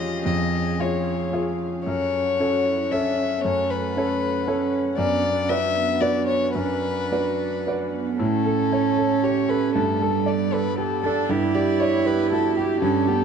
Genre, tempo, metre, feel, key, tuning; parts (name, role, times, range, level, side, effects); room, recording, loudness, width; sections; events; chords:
neoclassical piano and strings; 115 BPM; 3/4; rubato; E dorian; A4 = 438 Hz
rich violin; melody; 0.0-13.2 s; G4 to E5; -25 LUFS; left 6 dB
warm cello; second line; 0.0-13.2 s; G3 to G#4; -26 LUFS; right 9 dB
clear grand piano; accompaniment; 0.0-13.2 s; E#2 to D5; -24 LUFS; right 1 dB
warm chamber string section; sustained chords; 0.0-13.2 s; A3 to F#5; -33 LUFS; right 1 dB
moderate scoring stage reverb, RT60 1.8 s; dark, warm production; -20 LUFS; side -7 dB against mid
0.0-8.2 A section; 8.2-13.2 B section
0.0 C#/E#; 1.9 F#m; 5.0 Bm/F#; 8.2 A; 9.8 Gadd9; 11.3 Em7/G